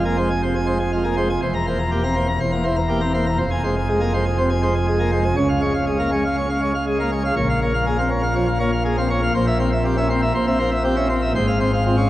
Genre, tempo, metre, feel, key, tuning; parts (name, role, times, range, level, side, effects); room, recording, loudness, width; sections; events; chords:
classical, organ toccata; 121 BPM; 4/4; straight; F minor; A4 = 440 Hz
pipe organ, plenum; solo; 0.0-12.1 s; E1 to Bb5; -18 LUFS; equal
wet church reverb, RT60 3.4 s; worn, warbling old tape, cassette tape, warbly pitch drift; -18 LUFS; side -15 dB against mid
0.0-12.1 A section
0.0 Fm; 1.4 C7/E; 3.4 Fm; 5.4 Db; 7.4 Bbm7; 9.3 C7/Bb; 11.3 Fm/Ab